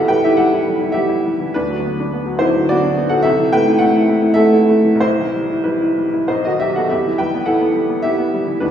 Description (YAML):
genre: classical, romantic character piece for solo piano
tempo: 90-111 BPM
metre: 3/4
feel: rubato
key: E minor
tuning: A4 = 437 Hz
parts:
  - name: bright upright piano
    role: solo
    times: 0.0-8.7 s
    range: B1 to G5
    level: -14 LUFS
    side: equal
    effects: none
room: wet recital hall reverb, RT60 1.4 s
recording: heard from further back in the room, small room reverb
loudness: -14 LUFS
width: side -9 dB against mid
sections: 0.0-8.7 A section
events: none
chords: 0.0 Em; 1.5 Bm/D; 3.2 Am/C; 5.0 Em/B; 6.3 B; 6.9 Em